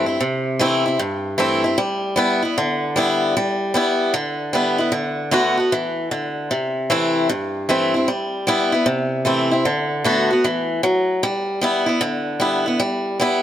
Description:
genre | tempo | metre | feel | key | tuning
rock | 152 BPM | 4/4 | swing 65% on 8ths | G major | A4 = 441 Hz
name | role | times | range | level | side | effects
picked swing-style acoustic guitar | solo | 0.0-13.4 s | G2 to F#4 | -17 LUFS | equal | none
room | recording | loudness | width
moderate echo chamber reverb, RT60 2.0 s | none | -17 LUFS | side -11 dB against mid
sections
0.0-11.2 A section; 11.2-13.4 B section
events
none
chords
0.0 C6; 1.8 G6; 4.9 D6; 6.5 C6; 8.1 G6; 8.9 C6; 9.7 D6; 11.2 G6

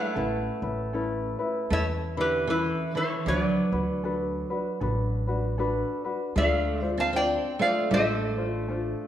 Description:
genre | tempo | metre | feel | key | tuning
Hawaiian | 78 BPM | 4/4 | swing 60% on 8ths | D major | A4 = 438 Hz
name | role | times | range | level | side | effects
metal-body resonator slide guitar | melody | 0.0-9.1 s | E4 to A5 | -28 LUFS | equal | none
picked steel-string acoustic guitar | second line | 0.0-9.1 s | D3 to C4 | -31 LUFS | right 3 dB | none
tenor ukulele | accompaniment | 0.0-9.1 s | C#4 to C5 | -30 LUFS | left 2 dB | none
upright bass | bass | 0.2-8.9 s | A1 to E2 | -31 LUFS | equal | none
room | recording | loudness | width
wet recital hall reverb, RT60 1.5 s | studio ambience | -24 LUFS | side -10 dB against mid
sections
0.0-6.4 A section; 6.4-9.1 B section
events
none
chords
0.2 Aadd9; 3.3 D6; 6.4 Dm7

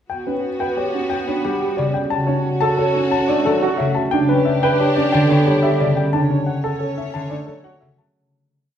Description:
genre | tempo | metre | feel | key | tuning
classical, minimalist pattern music | 179 BPM | 6/4 | straight | D major | A4 = 441 Hz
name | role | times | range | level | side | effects
dark grand piano | melody | 0.1-8.2 s | G4 to A5 | -22 LUFS | left 4 dB | none
clear French horn | second line | 0.1-7.9 s | C#4 to F#4 | -26 LUFS | right 2 dB | none
rich studio string section | sustained chords | 0.1-7.9 s | B3 to C#5 | -26 LUFS | right 1 dB | none
dark concert grand piano | arpeggios | 0.3-7.9 s | C#4 to C#5 | -22 LUFS | right 4 dB | none
concert harp | accompaniment | 1.3-8.2 s | C#3 to B3 | -21 LUFS | equal | none
room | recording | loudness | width
wet recital hall reverb, RT60 1.8 s | heard from further back in the room | -16 LUFS | side -9 dB against mid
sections
0.1-8.2 A section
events
fade-out 6.1-8.2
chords
0.1 Gmaj7; 2.1 Dmaj7 (rootless); 4.1 Em7; 6.1 Dmaj7

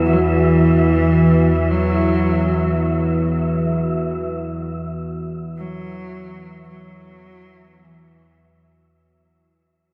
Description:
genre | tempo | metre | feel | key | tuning
dark ambient drone | 54 BPM | 4/4 | straight | unclear | A4 = 438 Hz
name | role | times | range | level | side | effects
deep dark ambient pad | sustained chords | 0.0-8.9 s | E4 to B4 | -25 LUFS | equal | chorus, built-in reverb
analog drone | drone | 0.0-9.0 s | E2 to E3 | -22 LUFS | equal | chorus
wind-like tuned noise texture | texture | 0.0-8.9 s | E5 | -31 LUFS | equal | built-in reverb
warm cello | melody | 0.1-8.7 s | E3 to F#3 | -23 LUFS | equal | analog delay
room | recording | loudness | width
wet huge ambient reverb, RT60 8.0 s | dreamy mix soaked in reverb | -18 LUFS | mono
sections
0.0-8.9 A section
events
fade-out 0.0-8.9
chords
0.0 Esus2

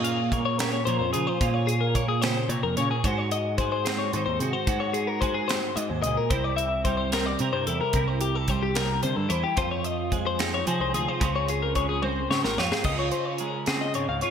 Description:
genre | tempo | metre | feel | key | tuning
math rock and midwest emo | 73 BPM (dotted quarters) | 6/8 | straight | Db major | A4 = 442 Hz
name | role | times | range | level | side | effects
twelve-string electric guitar | accompaniment | 0.0-14.3 s | Ab2 to C5 | -29 LUFS | right 5 dB | ensemble chorus
twelve-string electric guitar | arpeggios | 0.0-14.3 s | G4 to F5 | -27 LUFS | left 7 dB | none
overdriven picked electric bass | bass | 0.0-14.2 s | Ab1 to F3 | -30 LUFS | equal | none
crisp fusion drum kit | drums | 0.0-14.3 s | crash cymbal, hi-hat, kick drum, snare drum, toms | -30 LUFS | right 1 dB | gated reverb
room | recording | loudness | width
moderate lush hall reverb, RT60 2.1 s | bright 1980s-style digital production | -23 LUFS | side -8 dB against mid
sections
0.0-12.9 A section; 12.9-14.3 B section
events
drum fill 12.0-12.9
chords
0.0 Bbm7; 3.0 Ab7; 6.3 C7; 9.6 Fm7; 11.2 Dbmaj7

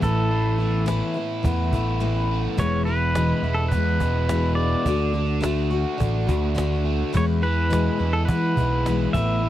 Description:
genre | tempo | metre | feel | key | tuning
folk rock and heartland rock | 105 BPM | 4/4 | straight | E mixolydian | A4 = 440 Hz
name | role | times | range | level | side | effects
pedal steel guitar | melody | 0.0-9.5 s | A4 to E5 | -26 LUFS | right 1 dB | none
picked steel-string acoustic guitar | accompaniment | 0.0-9.5 s | E2 to F#4 | -26 LUFS | left 5 dB | none
biting overdriven guitar | riff | 0.0-9.5 s | E2 to F#4 | -29 LUFS | right 3 dB | spring reverb
picked electric bass | bass | 0.0-9.5 s | E1 to E3 | -23 LUFS | right 1 dB | none
cajon | drums | 0.0-9.3 s | none | -26 LUFS | right 1 dB | none
room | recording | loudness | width
little or no reverb | dry, close 1970s-style studio recording | -20 LUFS | side -13 dB against mid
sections
0.0-9.5 A section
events
kick and snare drop out 2.0-2.6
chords
0.0 Asus2; 2.6 E; 4.9 D; 7.1 E

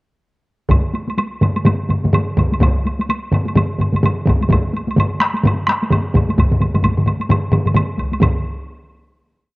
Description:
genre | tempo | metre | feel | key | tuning
japanese traditional, taiko drum ensemble | 128 BPM | 4/4 | swing 60% on 16ths | none | none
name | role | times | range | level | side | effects
solo taiko drums | percussion | 0.7-8.6 s | none | -18 LUFS | left 1 dB | none
solo taiko drums | percussion | 0.7-8.6 s | none | -19 LUFS | right 1 dB | none
taiko ensemble | percussion | 0.7-8.4 s | none | -22 LUFS | equal | none
taiko ensemble | percussion | 0.7-8.4 s | none | -19 LUFS | equal | none
woodblock | percussion | 0.7-8.4 s | none | -25 LUFS | right 1 dB | none
room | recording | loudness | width
moderate spring reverb, RT60 1.6 s, studio reverb | worn, warbling old tape, cassette tape, warbly pitch drift | -14 LUFS | side -21 dB against mid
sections
0.7-8.2 A section; 8.2-9.6 final hit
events
speeding up 0.7-9.6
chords
none

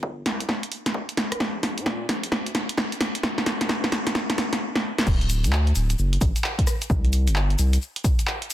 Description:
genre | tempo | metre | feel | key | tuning
UK garage, two-step garage | 131 BPM | 4/4 | swing 63% on 16ths | unclear | A4 = 441 Hz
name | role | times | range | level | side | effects
saturated sub bass | bass | 0.0-7.8 s | D1 to Bb2 | -24 LUFS | equal | high-pass filter
electronic kick drum | drums | 0.0-8.2 s | none | -24 LUFS | equal | high-pass filter on kick, high-pass filter on room
punchy analog drum machine | drums | 0.3-8.5 s | cabasa, crash cymbal, handclaps, hi-hat, rim click, snare drum | -24 LUFS | equal | none
room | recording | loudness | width
light reverb | dense, heavily limited modern master | -21 LUFS | side -13 dB against mid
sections
0.0-5.1 A section; 5.1-8.5 B section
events
build-up 0.0-5.1; drum fill 0.0-4.6, 4.7-5.1; drop 5.1-8.5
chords
none

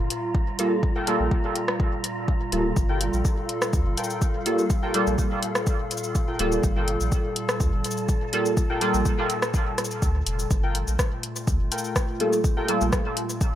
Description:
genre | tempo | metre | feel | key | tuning
dub techno | 124 BPM | 4/4 | straight | G minor | A4 = 435 Hz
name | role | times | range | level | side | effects
warbly tape-like pad | sustained chords | 0.0-13.6 s | Bb2 to A4 | -32 LUFS | equal | chorus, built-in reverb, sidechain pumping
soft dub sub bass | bass | 0.0-12.9 s | D1 to D2 | -26 LUFS | equal | sidechain pumping
wind-like tuned noise texture | texture | 0.0-10.5 s | F4 to Bb5 | -35 LUFS | right 1 dB | built-in reverb, sidechain pumping
deep house drum kit | drums | 0.1-13.5 s | cabasa, hi-hat, rim click | -29 LUFS | left 1 dB | overdrive
electronic kick drum | drums | 0.3-13.5 s | none | -24 LUFS | equal | overdrive
resonant sweep polysynth | stabs | 0.6-9.0, 12.2-12.9 s | G3 to A4 | -26 LUFS | right 1 dB | chorus, phaser, sidechain pumping, dub echo
warbly lo-fi synth keys | riff | 1.0-12.7 s | F4 to G5 | -35 LUFS | left 2 dB | chorus, sidechain pumping, dub echo
room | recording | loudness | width
light reverb | none | -22 LUFS | side -12 dB against mid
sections
0.0-10.5 A section; 10.5-13.6 A section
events
filter sweep on analog polysynth 0.0-10.5, 10.5-13.6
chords
0.0 Gm9

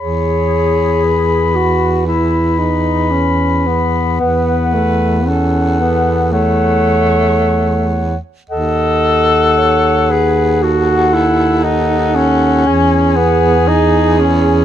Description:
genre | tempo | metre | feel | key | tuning
classical, lyrical piece for single-reed quartet | 57 BPM | 4/4 | rubato | E major | A4 = 440 Hz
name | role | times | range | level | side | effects
clear clarinet | melody | 0.0-14.6 s | F#5 to B5 | -19 LUFS | left 5 dB | none
warm alto saxophone | second line | 0.0-14.6 s | G#4 to D#5 | -20 LUFS | right 8 dB | none
mellow tenor saxophone | accompaniment | 0.0-14.6 s | A3 to A4 | -14 LUFS | left 2 dB | none
clear baritone saxophone | bass | 0.0-14.6 s | D#2 to E2 | -16 LUFS | right 2 dB | none
room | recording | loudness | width
little or no reverb | close, detailed microphones | -11 LUFS | side -10 dB against mid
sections
0.0-14.6 A section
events
none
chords
0.0 E; 4.2 F#m7/E; 8.5 D#m7b5; 12.7 E

